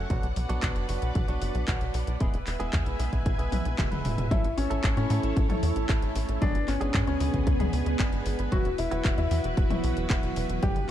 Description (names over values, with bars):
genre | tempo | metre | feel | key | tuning
italo disco | 114 BPM | 4/4 | straight | unclear | A4 = 441 Hz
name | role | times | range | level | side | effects
string machine, full ensemble | sustained chords | 0.0-10.9 s | G3 to G#5 | -34 LUFS | equal | ensemble chorus
direct-recorded clean electric guitar | stabs | 0.0-10.8 s | D3 to B4 | -36 LUFS | right 4 dB | none
tight sequencer bass | bass | 0.0-10.9 s | E1 to A2 | -29 LUFS | equal | none
electronic kick drum | drums | 0.1-10.7 s | none | -27 LUFS | equal | none
house drum kit | drums | 0.1-10.9 s | handclaps, hi-hat, toms | -35 LUFS | left 1 dB | none
clear grand piano | melody | 4.3-10.9 s | C#4 to G4 | -32 LUFS | left 3 dB | ping-pong delay
room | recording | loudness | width
light reverb, digital ambience | dark, warm production | -24 LUFS | side -11 dB against mid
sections
0.0-4.3 A section; 4.3-10.9 B section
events
drum fill 3.5-4.3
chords
0.1 Bm; 2.2 E; 4.3 A; 6.4 G#dim; 8.5 Esus2